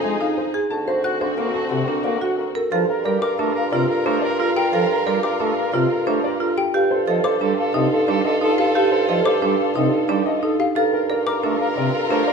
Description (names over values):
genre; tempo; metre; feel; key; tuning
classical, minimalist pattern music; 179 BPM; 6/4; straight; G minor; A4 = 440 Hz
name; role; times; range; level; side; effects
dark grand piano; melody; 0.0-12.3 s; G4 to A5; -26 LUFS; left 6 dB; none
mellow soprano saxophone; second line; 0.0-12.3 s; F#4 to Bb4; -27 LUFS; right 2 dB; none
pipe organ, cornet; accompaniment; 0.0-12.2 s; C3 to Bb3; -26 LUFS; equal; none
warm studio string section; sustained chords; 0.0-12.3 s; C4 to Bb4; -28 LUFS; equal; none
marimba with medium hard mallets; arpeggios; 0.0-12.3 s; D4 to C5; -22 LUFS; right 5 dB; none
mellow bassoon; bass; 0.0-12.3 s; D2 to G2; -26 LUFS; equal; none
xylophone with soft rubber mallets; arpeggios; 1.0-11.5 s; F5 to F#6; -28 LUFS; left 6 dB; none
room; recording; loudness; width
moderate stone room reverb, RT60 1.0 s; minimal, uncompressed stereo recording; -18 LUFS; side -5 dB against mid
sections
0.0-2.7 A section; 2.7-12.3 B section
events
none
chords
0.0 Fm7; 0.7 D7b13; 2.7 Gm11; 6.7 F9/G; 10.8 Gm11